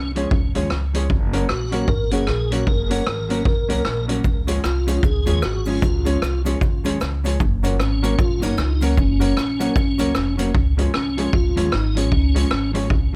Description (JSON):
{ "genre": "ska", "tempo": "152 BPM", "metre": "4/4", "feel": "swing 60% on 8ths", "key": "Db major", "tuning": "A4 = 440 Hz", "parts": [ { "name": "tonewheel organ", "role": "melody", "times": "0.0-12.7 s", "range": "Db4 to Bb4", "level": "-28 LUFS", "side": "equal", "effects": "chorus vibrato, slow rotary speaker, dub echo" }, { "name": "upright bass", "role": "bass", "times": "0.0-13.1 s", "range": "F1 to Eb2", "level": "-25 LUFS", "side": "equal", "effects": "none" }, { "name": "mellow electric guitar", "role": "accompaniment", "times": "0.2-13.2 s", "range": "F3 to Db4", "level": "-29 LUFS", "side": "equal", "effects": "dub echo" }, { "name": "warm upright piano", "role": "stabs", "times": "0.2-12.9 s", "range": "Db4 to Db5", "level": "-30 LUFS", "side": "equal", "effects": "dub echo" }, { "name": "street-band drum kit", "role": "drums", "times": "0.2-13.0 s", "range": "hi-hat, kick drum, rim click", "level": "-25 LUFS", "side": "equal", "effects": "none" }, { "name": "cabasa", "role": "percussion", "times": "4.2-10.5 s", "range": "none", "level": "-46 LUFS", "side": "equal", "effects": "none" } ], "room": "small room ambience", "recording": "none", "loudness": "-20 LUFS", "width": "mono", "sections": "0.0-10.5 A section; 10.5-13.2 A section", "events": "none", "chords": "0.0 Db; 1.1 Gb; 4.2 Db; 7.4 Gb; 10.5 Db" }